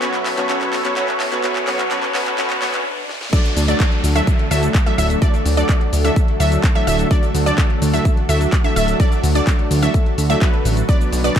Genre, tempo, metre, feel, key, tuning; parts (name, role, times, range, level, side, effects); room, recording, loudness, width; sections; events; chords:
EDM, festival progressive house; 127 BPM; 4/4; straight; D major; A4 = 440 Hz
direct-recorded clean electric guitar; accompaniment; 0.0-2.8 s; B2 to F#4; -28 LUFS; left 1 dB; sidechain pumping, digital delay
lush unison pad; sustained chords; 0.0-11.4 s; D3 to B5; -26 LUFS; equal; chorus, phaser, sidechain pumping
supersaw stab; riff; 0.0-11.4 s; F#3 to E5; -22 LUFS; equal; sidechain pumping, digital delay
house drum kit; drums; 0.0-11.4 s; crash cymbal, handclaps, hi-hat, shaker, snare drum; -25 LUFS; left 1 dB; high-pass filter on snare, high-pass filter on hats, high-pass filter on cymbals, high-pass filter on perc, high-pass filter on room
riser, swell and downlifter; sound effects; 1.1-7.1 s; -30 LUFS; equal
fat analog bass; bass; 0.3-11.3 s; D1 to A2; -18 LUFS; equal; sidechain pumping, high-pass filter
wide unison pluck; arpeggios; 3.3-11.4 s; B4 to E5; -24 LUFS; right 1 dB; sidechain pumping, digital delay
electronic kick drum; drums; 3.3-11.4 s; -16 LUFS; equal; overdrive
light reverb, digital ambience; dark, warm production, high-pass filter; -15 LUFS; side -9 dB against mid
0.0-3.3 A section; 3.3-11.4 B section
build-up 0.0-3.3; drum fill 0.0-2.9, 3.1; riser 1.1-3.3; swell 2.4-3.3; stop 2.9-3.3; drop 3.3-11.4
0.0 Aadd9; 3.3 D; 10.9 Bm